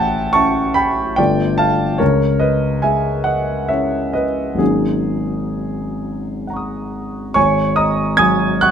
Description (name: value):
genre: classical, impressionist solo piano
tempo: 63-74 BPM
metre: 3/4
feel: rubato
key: unclear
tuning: A4 = 440 Hz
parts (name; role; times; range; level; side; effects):
- warm grand piano; solo; 0.0-8.7 s; G1 to G#6; -15 LUFS; equal; none
room: little or no reverb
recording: close, detailed microphones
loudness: -15 LUFS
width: side -8 dB against mid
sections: 0.0-7.4 A section; 7.4-8.7 B section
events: none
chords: 0.0 A7; 1.2 G9; 2.0 C#m6; 4.6 G#9sus4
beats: 0.35 1.18 | 2.01 2.82 3.71 | 4.60 5.53 6.47 | 7.36 8.20